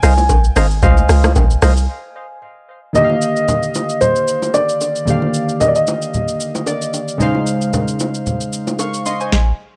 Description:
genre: amapiano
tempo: 113 BPM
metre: 4/4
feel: swing 55% on 16ths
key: Eb major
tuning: A4 = 439 Hz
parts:
  - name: dark baby grand piano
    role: melody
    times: 0.0-6.9 s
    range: C5 to Ab5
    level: -20 LUFS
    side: equal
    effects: tape echo
  - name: percussive organ stab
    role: stabs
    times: 0.0-1.7 s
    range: C5 to F5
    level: -24 LUFS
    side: equal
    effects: chorus, tape echo
  - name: hollow log drum bass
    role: bass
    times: 0.0-1.9 s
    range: Ab1 to Db2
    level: -16 LUFS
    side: equal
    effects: none
  - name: booming analog drum machine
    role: drums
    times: 0.0-9.5 s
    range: hi-hat, kick drum, rim click, shaker, snare drum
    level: -20 LUFS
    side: equal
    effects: none
  - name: bongos and congas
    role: percussion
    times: 0.2-9.2 s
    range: none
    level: -24 LUFS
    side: equal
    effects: none
  - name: warm analog keys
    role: accompaniment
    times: 2.9-9.5 s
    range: Db3 to Db6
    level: -22 LUFS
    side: equal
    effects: chorus
room: digital ambience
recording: dry, gritty hardware recording, cassette tape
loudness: -16 LUFS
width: mono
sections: 0.0-3.0 A section; 3.0-9.8 B section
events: drop 0.0-3.0; break 1.9-3.0; synth keys fill 6.4-7.2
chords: 0.0 Dbmaj9; 3.0 Ebmaj9; 7.2 Dbmaj9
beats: 0.30 | 0.83 1.36 1.89 2.42 | 2.95 3.48 4.01 4.55 | 5.08 5.61 6.14 6.67 | 7.20 7.73 8.26 8.79 | 9.32

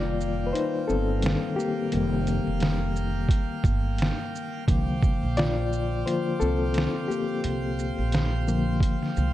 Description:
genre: lo-fi hip hop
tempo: 87 BPM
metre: 4/4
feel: swing 56% on 16ths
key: C dorian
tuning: A4 = 438 Hz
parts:
  - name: bright reed electric piano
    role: accompaniment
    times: 0.0-9.3 s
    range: D3 to D5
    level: -27 LUFS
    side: left 3 dB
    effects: fast tremolo, cassette tape
  - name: pipe organ, full organ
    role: sustained chords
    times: 0.0-9.3 s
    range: Bb3 to F6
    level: -35 LUFS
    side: right 2 dB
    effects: none
  - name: upright bass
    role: bass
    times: 0.0-9.3 s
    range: F1 to C2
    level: -28 LUFS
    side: right 1 dB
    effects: none
  - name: trip hop sampler-style drum kit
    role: drums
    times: 0.2-9.3 s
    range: hi-hat, kick drum, shaker, snare drum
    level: -26 LUFS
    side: right 1 dB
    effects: none
room: light reverb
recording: dark, warm production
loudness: -23 LUFS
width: side -14 dB against mid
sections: 0.0-9.3 A section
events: reed electric piano solo 0.0-9.3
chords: 0.0 F9sus4; 4.7 C9sus4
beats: 0.54 1.23 | 1.92 2.61 3.30 3.99 | 4.68 5.37 6.05 6.75 | 7.43 8.12 8.81

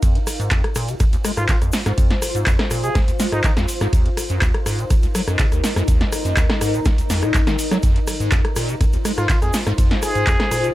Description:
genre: acid house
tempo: 123 BPM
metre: 4/4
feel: straight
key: F phrygian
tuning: A4 = 440 Hz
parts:
  - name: liquid acid bass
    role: riff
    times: 0.0-10.7 s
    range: Db2 to Ab3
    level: -23 LUFS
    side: equal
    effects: chorus, sidechain pumping
  - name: breakbeat sampler-style drum kit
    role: drums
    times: 0.0-10.6 s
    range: hi-hat, ride cymbal, snare drum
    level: -36 LUFS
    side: right 3 dB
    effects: none
  - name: electro analog drum machine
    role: drums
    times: 0.0-10.7 s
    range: handclaps, hi-hat, rim click, snare drum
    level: -23 LUFS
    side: equal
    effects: none
  - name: electronic kick drum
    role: drums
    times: 0.0-10.4 s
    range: none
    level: -19 LUFS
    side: equal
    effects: none
  - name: tube shaker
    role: percussion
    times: 0.0-10.7 s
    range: none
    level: -34 LUFS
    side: left 2 dB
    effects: none
  - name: granular cloud pad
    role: texture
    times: 0.0-10.7 s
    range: Eb4 to C5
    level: -27 LUFS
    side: left 2 dB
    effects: built-in reverb, sidechain pumping
  - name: trumpet with plunger mute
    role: melody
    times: 1.4-3.5, 9.2-10.7 s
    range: Eb4 to Ab4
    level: -25 LUFS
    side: right 1 dB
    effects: tape echo
room: light reverb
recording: none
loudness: -16 LUFS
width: side -15 dB against mid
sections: 0.0-10.7 A section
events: drop 0.0-10.7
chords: 0.0 Fm; 3.9 Ebm; 7.8 Fm7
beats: | 0.03 0.51 1.00 1.49 | 1.98 2.46 2.95 3.44 | 3.93 4.42 4.90 5.39 | 5.88 6.37 6.86 7.34 | 7.83 8.32 8.81 9.29 | 9.78 10.27

